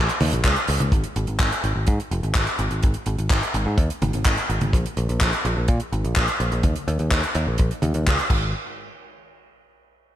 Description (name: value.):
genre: italo disco.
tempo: 126 BPM.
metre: 4/4.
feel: straight.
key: unclear.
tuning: A4 = 440 Hz.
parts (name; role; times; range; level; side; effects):
picked electric bass; bass; 0.0-8.5 s; F1 to Bb2; -23 LUFS; equal; tube saturation, diffuse ambient delay.
damped 70s drum kit; drums; 0.1-8.4 s; crash cymbal, handclaps, hi-hat, toms; -24 LUFS; equal; studio reverb.
kick drum; drums; 0.4-8.4 s; none; -21 LUFS; equal; studio reverb.
room: light reverb.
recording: none.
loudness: -19 LUFS.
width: side -12 dB against mid.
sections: 0.9-8.5 A section; 8.5-10.2 B section.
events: none.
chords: none.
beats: 0.45 | 0.92 1.40 1.88 2.35 | 2.83 3.30 3.78 4.26 | 4.73 5.21 5.68 6.16 | 6.64 7.11 7.59 8.06.